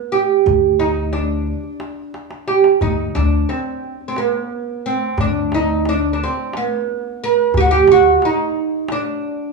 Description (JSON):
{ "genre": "Turkish makam ensemble", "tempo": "178 BPM (eighths)", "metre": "7/8", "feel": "straight", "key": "D makam hicaz", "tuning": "A4 = 440 Hz", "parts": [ { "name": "oud", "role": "melody", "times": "0.0-9.5 s", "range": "B3-40c to B4-40c", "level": "-16 LUFS", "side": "right 4 dB", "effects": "none" }, { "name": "upright bass", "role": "bass", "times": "0.5-8.1 s", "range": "D2", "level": "-21 LUFS", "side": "left 2 dB", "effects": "none" }, { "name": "darbuka", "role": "percussion", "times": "0.5-9.3 s", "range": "none", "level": "-26 LUFS", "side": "left 1 dB", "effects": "none" } ], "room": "moderate large studio reverb, RT60 1.1 s", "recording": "band playing live in one room, small room ambience", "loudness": "-15 LUFS", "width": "side -3 dB against mid", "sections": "0.0-9.5 A section", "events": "drum fill 2.1-2.8", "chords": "none" }